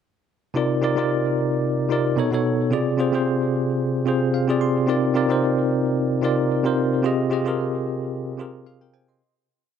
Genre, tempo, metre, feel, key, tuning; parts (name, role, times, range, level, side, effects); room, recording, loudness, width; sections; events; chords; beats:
amapiano; 111 BPM; 4/4; swing 55% on 16ths; A4 = 441 Hz
bell-like tine electric piano; solo; 0.5-9.3 s; B2 to C6; -20 LUFS; equal; fast stereo tremolo, tape echo
light reverb, digital ambience; -19 LUFS; side -8 dB against mid
0.5-9.2 groove
tine electric piano fill 4.1-4.9, 8.4-9.2; fade-out 7.0-9.2
0.5 Cm11; 2.2 B9; 2.7 Fm6/C; 4.9 Cm11; 7.0 Fm9/C
| 0.55 1.09 1.63 2.17 | 2.71 3.25 3.79 4.33 | 4.87 5.41 5.95 6.49 | 7.04 7.58 8.12 8.66